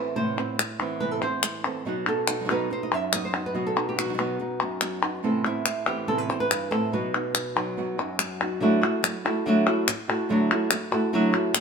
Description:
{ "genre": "flamenco", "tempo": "142 BPM", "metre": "4/4", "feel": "straight", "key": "unclear", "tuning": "A4 = 441 Hz", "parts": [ { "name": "flamenco guitar", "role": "melody", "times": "0.0-11.6 s", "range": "F#2 to F#5", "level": "-25 LUFS", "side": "right 1 dB", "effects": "none" }, { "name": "flamenco guitar", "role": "stabs", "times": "0.0-11.2 s", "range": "A2 to F#4", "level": "-32 LUFS", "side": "right 5 dB", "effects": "none" }, { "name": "palmas hand claps", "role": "percussion", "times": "0.4-11.6 s", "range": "none", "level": "-26 LUFS", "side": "left 4 dB", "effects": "none" } ], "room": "moderate stone room reverb, RT60 1.4 s", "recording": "minimal, uncompressed stereo recording", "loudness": "-23 LUFS", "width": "side -6 dB against mid", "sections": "0.0-8.6 A section; 8.6-11.6 B section", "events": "none", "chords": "0.0 Amadd9; 1.9 B; 5.2 Amadd9; 6.9 B; 8.6 Dadd9" }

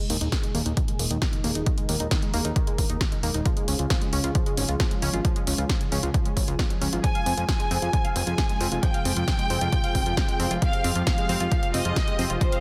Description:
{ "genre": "uplifting trance", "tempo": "134 BPM", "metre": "4/4", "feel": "straight", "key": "F minor", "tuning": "A4 = 441 Hz", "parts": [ { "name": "analog string pad", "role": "sustained chords", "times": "0.0-12.6 s", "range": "Bb2 to Bb4", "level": "-36 LUFS", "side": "equal", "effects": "ensemble chorus, sidechain pumping" }, { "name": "analog pluck", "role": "arpeggios", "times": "0.0-12.6 s", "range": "Eb3 to F5", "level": "-34 LUFS", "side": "equal", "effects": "chorus, sidechain pumping, tape echo" }, { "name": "fat analog bass", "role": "bass", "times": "0.1-12.4 s", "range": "Eb1 to F2", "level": "-30 LUFS", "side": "equal", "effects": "sidechain pumping" }, { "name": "punchy analog drum machine", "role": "drums", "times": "0.1-12.6 s", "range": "hi-hat, snare drum", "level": "-33 LUFS", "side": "equal", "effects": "none" }, { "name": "electronic kick drum", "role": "drums", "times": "0.3-12.5 s", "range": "none", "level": "-27 LUFS", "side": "equal", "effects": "none" }, { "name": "rich studio violin section", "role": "second line", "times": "7.0-12.6 s", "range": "C5 to Ab5", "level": "-31 LUFS", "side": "equal", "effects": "delay" } ], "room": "light reverb, digital ambience", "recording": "dense, heavily limited modern master", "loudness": "-25 LUFS", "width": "mono", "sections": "0.0-12.6 A section", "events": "filter sweep on synth pluck 0.0-12.6; filter sweep on analog synth pad 0.0-12.6", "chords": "0.0 Ebsus4; 3.5 Db; 7.0 Fm" }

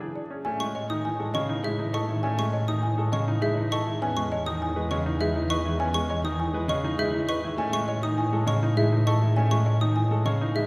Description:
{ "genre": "classical, minimalist pattern music", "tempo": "101 BPM", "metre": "3/4", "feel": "straight", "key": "A lydian", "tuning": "A4 = 440 Hz", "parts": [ { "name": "folk marimba with medium mallets", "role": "melody", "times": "0.0-10.7 s", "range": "G#4 to G#5", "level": "-34 LUFS", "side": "equal", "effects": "none" }, { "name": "clear concert grand piano", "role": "accompaniment", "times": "0.0-10.7 s", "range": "C#3 to B3", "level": "-33 LUFS", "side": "equal", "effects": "none" }, { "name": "clear grand piano", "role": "arpeggios", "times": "0.0-10.7 s", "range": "C#4 to C#5", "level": "-36 LUFS", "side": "equal", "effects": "none" }, { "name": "rich double bass", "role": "bass", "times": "0.5-10.7 s", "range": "E2 to A2", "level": "-30 LUFS", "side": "equal", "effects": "none" }, { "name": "xylophone with plastic mallets", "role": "arpeggios", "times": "0.6-10.7 s", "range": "E5 to D#6", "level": "-36 LUFS", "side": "equal", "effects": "none" } ], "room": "wet church reverb, RT60 2.9 s", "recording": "heard from further back in the room", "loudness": "-26 LUFS", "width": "mono", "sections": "0.5-10.7 A section", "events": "none", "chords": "0.5 Amaj7; 4.0 Emaj7; 7.6 Amaj7" }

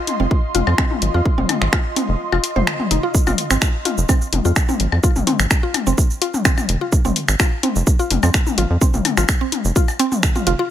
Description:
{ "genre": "minimal techno", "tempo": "127 BPM", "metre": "4/4", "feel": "straight", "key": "F minor", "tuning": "A4 = 441 Hz", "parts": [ { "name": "ethereal airy pad", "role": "texture", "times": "0.0-3.2 s", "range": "F4 to C6", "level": "-27 LUFS", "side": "right 1 dB", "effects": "ensemble chorus, built-in reverb, sidechain pumping" }, { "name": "house drum kit", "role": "drums", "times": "0.1-10.6 s", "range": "cabasa, finger snaps, hi-hat", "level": "-22 LUFS", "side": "equal", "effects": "none" }, { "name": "electronic toms and percussion blips", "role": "percussion", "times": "0.1-10.4 s", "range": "none", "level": "-23 LUFS", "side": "left 5 dB", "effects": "ping-pong delay" }, { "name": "mallet-like synth pluck", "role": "riff", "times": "0.2-10.6 s", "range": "C4 to C5", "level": "-24 LUFS", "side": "right 1 dB", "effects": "chorus, sidechain pumping, dub echo" }, { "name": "rubbery square bass", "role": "bass", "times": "0.2-10.5 s", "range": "F1 to F2", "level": "-18 LUFS", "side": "equal", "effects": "sidechain pumping" }, { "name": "electronic kick drum", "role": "drums", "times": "0.3-10.3 s", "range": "none", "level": "-17 LUFS", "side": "equal", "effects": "none" } ], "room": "little or no reverb", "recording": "none", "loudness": "-15 LUFS", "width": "side -11 dB against mid", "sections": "0.0-3.1 A section; 3.1-10.7 B section", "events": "kick drops out 2.2-3.1; drop 3.1-10.7", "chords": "0.0 F7(no3); 3.1 N.C." }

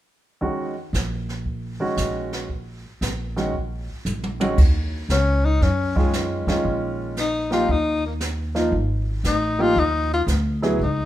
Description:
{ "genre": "jazz, small-group swing and bop", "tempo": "116 BPM", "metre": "4/4", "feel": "swing 67% on 8ths", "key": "unclear", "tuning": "A4 = 438 Hz", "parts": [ { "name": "clear baby grand piano", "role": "accompaniment", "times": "0.4-10.8 s", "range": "Eb3 to Ab4", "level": "-24 LUFS", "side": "right 1 dB", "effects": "none" }, { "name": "jazz brush drum kit", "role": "drums", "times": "0.4-11.1 s", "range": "brushed snare drum, hi-hat, kick drum, ride cymbal, snare drum, toms", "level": "-24 LUFS", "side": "right 1 dB", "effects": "none" }, { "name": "upright bass", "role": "bass", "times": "0.9-11.1 s", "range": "Ab1 to Gb2", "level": "-24 LUFS", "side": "equal", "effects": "none" }, { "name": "clear tenor saxophone", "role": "melody", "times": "5.1-11.1 s", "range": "Ab3 to F4", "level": "-22 LUFS", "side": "left 3 dB", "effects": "none" } ], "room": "light reverb", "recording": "minimal, uncompressed stereo recording", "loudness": "-20 LUFS", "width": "side -13 dB against mid", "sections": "0.4-4.6 A section; 4.6-11.1 B section", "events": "drum fill 4.1-4.6", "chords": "0.4 Bbmadd11; 4.6 Ebm9; 6.7 Bbm7; 7.7 Ebsus2; 8.7 Ab5" }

